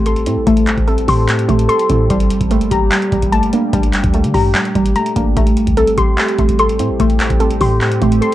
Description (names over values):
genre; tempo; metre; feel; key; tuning
hip hop, trap; 147 BPM; 4/4; half-time; A phrygian; A4 = 438 Hz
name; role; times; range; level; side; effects
muted felt-like synth keys; accompaniment; 0.0-8.3 s; G3 to A4; -19 LUFS; left 1 dB; chorus, low-pass filter
deep dark ambient pad; sustained chords; 0.0-8.3 s; Bb2 to A4; -24 LUFS; right 3 dB; chorus, built-in reverb
warbly dusty pluck; arpeggios; 0.0-8.3 s; G3 to C6; -17 LUFS; equal; chorus, phaser, low-pass filter, ping-pong delay
clean 808-style bass; bass; 0.0-8.2 s; G1 to D3; -19 LUFS; equal; none
booming analog drum machine; drums; 0.1-8.3 s; handclaps, hi-hat, kick drum; -17 LUFS; equal; none
room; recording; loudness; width
light reverb, digital ambience; worn, warbling old tape, cassette tape, warbly pitch drift; -12 LUFS; side -14 dB against mid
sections
0.0-8.3 A section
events
none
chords
0.0 Am7; 2.1 Gmadd9; 5.4 Am7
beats
0.06 | 0.47 0.88 1.28 1.69 | 2.10 2.51 2.92 3.33 | 3.73 4.14 4.55 4.96 | 5.37 5.77 6.18 6.59 | 7.00 7.41 7.81 8.22